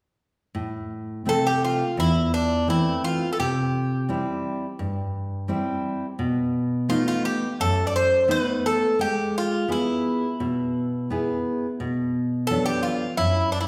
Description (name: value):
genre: greek folk, Greek bouzouki band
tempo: 86 BPM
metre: 4/4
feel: straight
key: A minor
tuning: A4 = 440 Hz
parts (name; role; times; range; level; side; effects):
- fingerpicked steel-string acoustic guitar; accompaniment; 0.5-13.7 s; E2 to G#4; -26 LUFS; equal; none
- Greek bouzouki; melody; 1.3-13.7 s; D4 to D5; -27 LUFS; equal; none
room: wet recital hall reverb, RT60 1.4 s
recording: recorded in a church or concert hall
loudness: -24 LUFS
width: mono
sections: 0.6-13.7 A section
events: none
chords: 0.6 Am; 3.4 C; 6.2 B7; 9.0 E; 11.8 Bm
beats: | 0.57 1.27 1.98 2.68 | 3.38 4.09 4.79 5.49 | 6.20 6.90 7.60 8.30 | 9.00 9.70 10.39 11.09 | 11.79 12.48 13.18